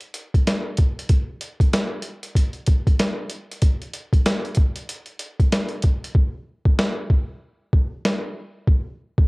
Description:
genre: hip hop.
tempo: 95 BPM.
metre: 4/4.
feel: swing 61% on 16ths.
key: none.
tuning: none.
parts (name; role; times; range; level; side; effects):
boom bap sampler-style drum kit; drums; 0.0-9.3 s; hi-hat, kick drum, snare drum; -18 LUFS; equal; none.
room: light reverb.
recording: home recording on cassette.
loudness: -19 LUFS.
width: side -28 dB against mid.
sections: 0.0-6.1 A section; 6.1-9.3 B section.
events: hi-hats muted 6.1-9.3.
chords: none.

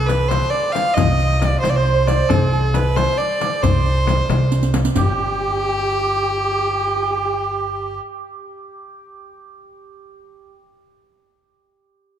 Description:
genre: Persian modal ensemble.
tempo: 90 BPM (dotted quarters).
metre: 6/8.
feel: straight.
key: C avaz esfahan.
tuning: A4 = 440 Hz.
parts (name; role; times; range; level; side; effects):
clear violin; melody; 0.0-8.0 s; G4 to F5; -21 LUFS; left 1 dB; none.
santur; second line; 0.0-10.5 s; G4 to G5; -24 LUFS; right 5 dB; none.
upright bass; bass; 0.0-8.0 s; G1 to C2; -20 LUFS; equal; none.
frame drum; percussion; 0.1-5.2 s; none; -25 LUFS; left 7 dB; none.
riq; percussion; 0.1-5.2 s; none; -28 LUFS; right 5 dB; none.
tombak; percussion; 0.1-5.2 s; none; -25 LUFS; left 2 dB; none.
room: moderate scoring stage reverb, RT60 1.9 s.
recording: dark, warm production.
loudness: -16 LUFS.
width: side -9 dB against mid.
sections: 0.0-5.0 A section; 5.0-7.6 B section.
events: drum fill 4.5-5.0.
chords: none.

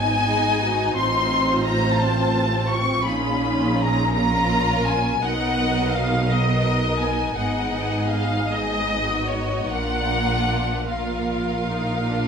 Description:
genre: classical, slow romantic movement for string orchestra.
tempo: 47-58 BPM (dotted quarters).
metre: 12/8.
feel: rubato.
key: unclear.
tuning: A4 = 443 Hz.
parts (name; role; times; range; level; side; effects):
rich studio violin section; melody; 0.0-12.3 s; Db5 to Db6; -23 LUFS; left 2 dB; none.
rich studio violin section; second line; 0.0-12.3 s; C4 to Eb5; -28 LUFS; equal; none.
rich studio viola section; accompaniment; 0.0-12.3 s; Bb3 to Ab4; -27 LUFS; equal; none.
clear studio double bass section; bass; 0.0-12.3 s; Ab1 to B1; -26 LUFS; right 1 dB; none.
rich studio cello section; bass; 0.0-12.3 s; Ab2 to B2; -28 LUFS; right 3 dB; none.
room: moderate recital hall reverb, RT60 1.5 s.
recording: close, detailed microphones.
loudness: -19 LUFS.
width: side -6 dB against mid.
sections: 0.0-12.3 A section.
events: none.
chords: 0.0 Abm; 1.0 F7/A; 3.1 Bbm; 5.2 Bmaj7; 7.4 Abm; 9.7 Bb.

